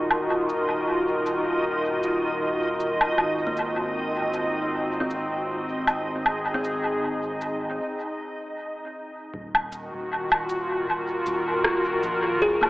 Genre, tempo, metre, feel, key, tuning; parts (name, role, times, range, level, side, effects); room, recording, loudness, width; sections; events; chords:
ambient dub; 78 BPM; 4/4; swing 55% on 16ths; Eb dorian; A4 = 439 Hz
airy breathy pad; sustained chords; 0.0-12.7 s; Eb3 to Bb4; -26 LUFS; equal; chorus
round analog bass; bass; 0.0-12.7 s; Eb1 to Bb1; -41 LUFS; equal
backwards swelling texture; texture; 0.0-7.8 s; Eb4 to Eb5; -30 LUFS; right 1 dB; built-in reverb
electronic woodblock, cabasa and rim click; drums; 0.1-12.7 s; -27 LUFS; equal; low-pass filter on perc, studio reverb, low-pass filter on snare, dub echo
kalimba; arpeggios; 3.5-12.7 s; Bb3 to Ab4; -30 LUFS; left 1 dB; tape echo
electronic kick drum; drums; 9.3-12.6 s; -46 LUFS; equal; studio reverb
wet echo chamber reverb, RT60 1.9 s, digital ambience; echo-heavy mix, telephone sound; -23 LUFS; side -19 dB against mid
0.0-9.3 A section; 9.3-12.7 B section
break 7.8-9.3
0.0 Ebmadd9; 3.2 Ab; 9.3 Ebmadd9